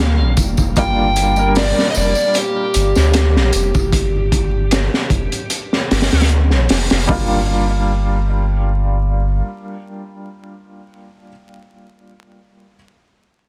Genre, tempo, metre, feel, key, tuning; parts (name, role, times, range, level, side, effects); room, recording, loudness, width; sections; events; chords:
trip hop; 76 BPM; 4/4; swing 53% on 16ths; G minor; A4 = 440 Hz
overdriven slide guitar; melody; 0.0-6.3 s; G4 to G5; -23 LUFS; equal; tape echo
warm upright piano; accompaniment; 0.0-12.8 s; G3 to Bb4; -25 LUFS; equal; tremolo, tape echo
string machine, cellos; sustained chords; 0.0-3.9 s; Bb3 to Bb4; -33 LUFS; equal
soft dub sub bass; bass; 0.0-9.4 s; F1 to D2; -19 LUFS; equal; tube saturation
crunchy breakbeat drum kit; drums; 0.0-7.3 s; hi-hat, kick drum, snare drum; -20 LUFS; equal
tambourine; percussion; 0.4-3.9 s; -30 LUFS; equal
studio ambience; dense, heavily limited modern master, vinyl crackle; -16 LUFS; mono
0.0-7.1 A section; 7.1-10.2 B section
0.0 Gm7